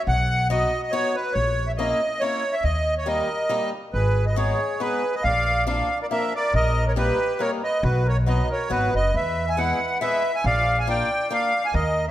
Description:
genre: alpine folk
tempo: 139 BPM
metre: 3/4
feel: swing 54% on 8ths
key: unclear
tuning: A4 = 441 Hz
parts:
  - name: accordion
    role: melody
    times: 0.0-12.1 s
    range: B4 to G#5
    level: -23 LUFS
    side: right 1 dB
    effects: light tremolo tuning
  - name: upright bass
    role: bass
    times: 0.1-12.1 s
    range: F#1 to E2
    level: -24 LUFS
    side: equal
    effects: none
  - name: picked swing-style acoustic guitar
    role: accompaniment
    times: 0.5-11.5 s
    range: E#3 to F#4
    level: -30 LUFS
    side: left 5 dB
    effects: none
  - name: mellow trumpet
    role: second line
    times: 3.1-12.1 s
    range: F#4 to E#5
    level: -29 LUFS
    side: right 2 dB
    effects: none
room: moderate recital hall reverb, RT60 1.6 s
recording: dark, warm production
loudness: -20 LUFS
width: side -13 dB against mid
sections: 0.0-12.1 A section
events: none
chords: 0.1 B; 1.4 A#dim; 2.6 D#; 3.9 G#m; 5.2 A#; 6.5 D#/A#; 7.8 B; 9.1 E; 10.4 A#

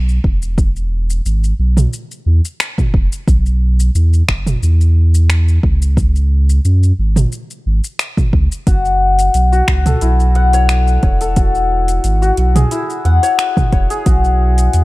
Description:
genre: organic downtempo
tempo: 89 BPM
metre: 4/4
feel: swing 54% on 16ths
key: unclear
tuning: A4 = 439 Hz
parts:
  - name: warm sub bass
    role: bass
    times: 0.0-14.8 s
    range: E1 to F#2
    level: -12 LUFS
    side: equal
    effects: sidechain pumping
  - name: deep house drum kit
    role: drums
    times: 0.1-14.8 s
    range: finger snaps, hi-hat, shaker, toms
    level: -20 LUFS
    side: right 2 dB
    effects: overdrive, small room ambience
  - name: electronic kick drum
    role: drums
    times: 0.2-14.2 s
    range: none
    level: -14 LUFS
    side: equal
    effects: overdrive, small room ambience
  - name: santur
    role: arpeggios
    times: 8.7-14.8 s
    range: E4 to F#5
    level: -16 LUFS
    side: left 4 dB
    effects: ping-pong delay
room: little or no reverb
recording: dark, warm production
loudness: -11 LUFS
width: side -19 dB against mid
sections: 0.0-14.8 A section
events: none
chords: 0.0 N.C.; 0.6 E; 3.3 Bsus2; 6.0 C#5; 8.7 F#m7; 11.4 E; 14.1 Bsus2

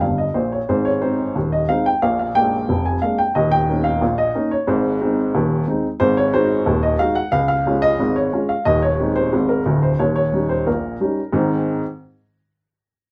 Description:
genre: ragtime piano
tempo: 90 BPM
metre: 2/4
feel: straight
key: Ab major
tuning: A4 = 440 Hz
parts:
  - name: warm upright piano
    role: solo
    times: 0.0-11.8 s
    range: D1 to Ab5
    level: -19 LUFS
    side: equal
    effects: none
room: moderate small room reverb, RT60 0.6 s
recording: band playing live in one room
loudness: -19 LUFS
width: mono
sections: 0.0-11.3 A section; 11.3-12.7 B section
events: upright piano fill 0.0-0.7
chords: 0.0 Eb; 0.7 Ab; 2.0 Bb7; 3.3 Eb5; 4.7 Ab; 6.0 Ab5; 7.3 Db; 8.7 Ab/Eb; 10.0 Eb7; 11.3 Ab

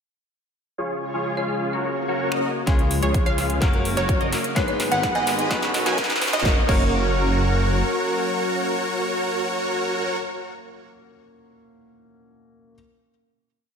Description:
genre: EDM, festival progressive house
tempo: 127 BPM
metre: 4/4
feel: straight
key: F# major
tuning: A4 = 436 Hz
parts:
  - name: lush unison pad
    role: sustained chords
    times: 0.8-9.9 s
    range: C#3 to C#5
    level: -30 LUFS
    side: right 1 dB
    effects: chorus, sidechain pumping
  - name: dense compressed supersaw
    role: riff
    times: 0.8-10.2 s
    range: C#4 to G#5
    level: -25 LUFS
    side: equal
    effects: sidechain pumping, low-pass filter, ping-pong delay
  - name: folk marimba with medium hard mallets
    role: melody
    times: 1.4-5.6 s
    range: C#5 to G#5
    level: -29 LUFS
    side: equal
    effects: ping-pong delay
  - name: swell and riser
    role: sound effects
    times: 1.9-6.5 s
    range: none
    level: -32 LUFS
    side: left 1 dB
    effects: none
  - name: big-room dance drum kit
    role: drums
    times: 2.3-6.8 s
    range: crash cymbal, finger snaps, hi-hat, snare drum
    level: -28 LUFS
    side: right 1 dB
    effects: high-pass filter on snare, high-pass filter on hats, high-pass filter on cymbals
  - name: bright concert grand piano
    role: accompaniment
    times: 2.7-12.8 s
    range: G#2 to B4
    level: -30 LUFS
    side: left 2 dB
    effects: sidechain pumping, ping-pong delay
  - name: wide unison pluck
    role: arpeggios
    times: 2.7-10.2 s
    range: C#5 to G#5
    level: -28 LUFS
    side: right 1 dB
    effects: sidechain pumping, ping-pong delay
  - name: detuned saw bass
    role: bass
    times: 2.7-7.8 s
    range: F#1 to C#2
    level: -25 LUFS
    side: equal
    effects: sidechain pumping
  - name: electronic kick drum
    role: drums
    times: 2.7-6.8 s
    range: none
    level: -22 LUFS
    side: equal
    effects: none
room: wet lush hall reverb, RT60 1.7 s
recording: dreamy mix soaked in reverb, high-pass filter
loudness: -20 LUFS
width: side -6 dB against mid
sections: 0.8-2.7 intro; 2.7-6.5 build; 6.5-10.2 final chord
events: swell 1.9-2.7; build-up 2.7-6.5; drum fill 2.7-6.5; filter sweep on supersaw synth 2.7-6.5; filter sweep on analog synth pad 2.7-6.5; filter sweep 2.7-6.5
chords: 0.8 C#; 1.7 F#; 2.7 C#; 3.6 F#; 4.6 G#m; 5.5 Badd9; 6.5 F#

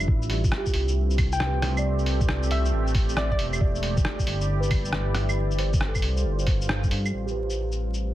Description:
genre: future garage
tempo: 136 BPM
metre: 4/4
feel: swing 65% on 16ths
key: A minor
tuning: A4 = 441 Hz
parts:
  - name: muted felt-like synth keys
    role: accompaniment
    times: 0.0-8.1 s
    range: D4 to E5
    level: -34 LUFS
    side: right 2 dB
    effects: chorus, sidechain pumping, low-pass filter, tape echo
  - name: deep dark ambient pad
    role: sustained chords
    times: 0.0-8.1 s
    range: G3 to D5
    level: -32 LUFS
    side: right 1 dB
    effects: chorus, built-in reverb, sidechain pumping
  - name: dark detuned saw bass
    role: bass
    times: 0.0-8.1 s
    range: E1 to G2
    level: -26 LUFS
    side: equal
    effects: none
  - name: lo-fi sampler-style drum kit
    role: drums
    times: 0.0-8.0 s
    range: claves, hi-hat, rim click, shaker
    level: -30 LUFS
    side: equal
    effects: none
  - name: electronic kick drum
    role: drums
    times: 0.1-6.9 s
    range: none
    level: -25 LUFS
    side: equal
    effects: none
  - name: hollow square pluck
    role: melody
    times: 1.3-3.4 s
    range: D5 to G5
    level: -32 LUFS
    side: left 1 dB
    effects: chorus, tape echo
room: light reverb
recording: heavily compressed radio sound, vinyl crackle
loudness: -22 LUFS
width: side -14 dB against mid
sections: 0.0-7.1 A section; 7.1-8.1 B section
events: band accent 6.7; filter sweep on synth keys 7.1-8.1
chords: 0.1 Am7; 3.6 Em7; 5.4 G7sus4; 7.1 Am7

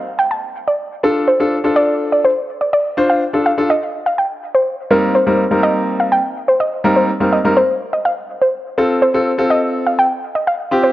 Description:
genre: pop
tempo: 124 BPM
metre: 4/4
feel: straight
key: C dorian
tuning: A4 = 440 Hz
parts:
  - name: soft round pluck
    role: melody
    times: 0.2-10.9 s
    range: A4 to A5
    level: -16 LUFS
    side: equal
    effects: chorus, dub echo
  - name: warm baby grand piano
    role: accompaniment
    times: 1.0-10.9 s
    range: G3 to C5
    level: -16 LUFS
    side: left 1 dB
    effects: none
room: moderate lush hall reverb, RT60 2.2 s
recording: worn, warbling old tape, cassette tape, warbly pitch drift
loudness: -13 LUFS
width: side -15 dB against mid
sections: 0.0-10.9 A section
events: none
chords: 0.0 Dm; 3.7 Cm7; 7.6 F

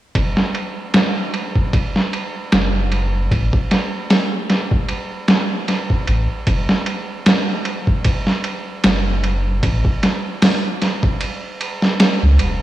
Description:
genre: trip hop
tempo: 76 BPM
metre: 4/4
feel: swing 55% on 16ths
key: unclear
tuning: A4 = 440 Hz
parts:
  - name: soft dub sub bass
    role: bass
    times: 0.2-12.6 s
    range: E1 to C#2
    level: -17 LUFS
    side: equal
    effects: tube saturation
  - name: boom bap sampler-style drum kit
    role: drums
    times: 0.2-12.6 s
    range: hi-hat, kick drum, ride cymbal, snare drum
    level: -16 LUFS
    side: right 1 dB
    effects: overdrive, low-pass filter on kick, small room ambience, low-pass filter on cymbals, low-pass filter on snare, low-pass filter on hats
room: wet lush hall reverb, RT60 2.6 s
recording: dreamy mix soaked in reverb, small room reverb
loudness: -16 LUFS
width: side -14 dB against mid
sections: 0.2-12.6 A section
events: none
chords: none

